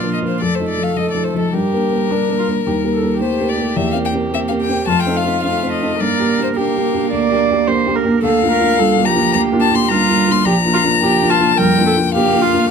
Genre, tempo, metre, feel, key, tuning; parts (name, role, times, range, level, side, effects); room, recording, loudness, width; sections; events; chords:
quick classical-period movement for piano quartet; 108 BPM; 4/4; straight; A4 = 440 Hz
rich violin; melody; 0.0-12.7 s; A4 to C6; -18 LUFS; left 8 dB
dark cello; second line; 0.0-12.7 s; F3 to Bb3; -21 LUFS; right 9 dB
dark baby grand piano; accompaniment; 0.0-12.7 s; Bb1 to Bb4; -18 LUFS; left 2 dB
warm viola; accompaniment; 0.0-12.7 s; D4 to D5; -20 LUFS; right 4 dB
light reverb; -13 LUFS; side -6 dB against mid
0.0-12.7 A section
0.4 F7; 1.5 Gm; 2.7 Eb; 3.8 C7/E; 4.9 F7; 6.0 Gm; 8.2 Bb/D; 10.5 Bb